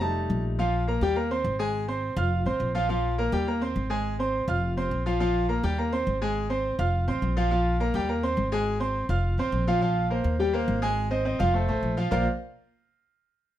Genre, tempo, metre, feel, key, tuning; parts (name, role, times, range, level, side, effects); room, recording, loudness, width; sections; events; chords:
latin, salsa; 208 BPM; 4/4; straight; A4 = 441 Hz
bright concert grand piano; accompaniment; 0.0-12.3 s; F3 to F6; -26 LUFS; equal
upright bass; bass; 0.0-12.3 s; F1 to Eb2; -28 LUFS; equal
light reverb; -24 LUFS; side -12 dB against mid
0.6-9.8 A section; 9.8-12.1 B section; 12.1-13.3 C section
0.0 F7; 0.6 Bb5; 1.2 Eb5; 1.7 Ab; 2.3 F; 2.9 Bb5; 3.5 Eb5; 4.0 Ab; 4.6 F5; 5.2 Bb5; 5.8 Eb5; 6.4 Ab; 6.9 F; 7.5 Bb5; 8.1 Eb5; 8.7 Ab; 9.2 F; 9.8 Bbsus2; 10.4 Eb6; 11.0 Ab; 11.5 F; 12.1 Bbadd9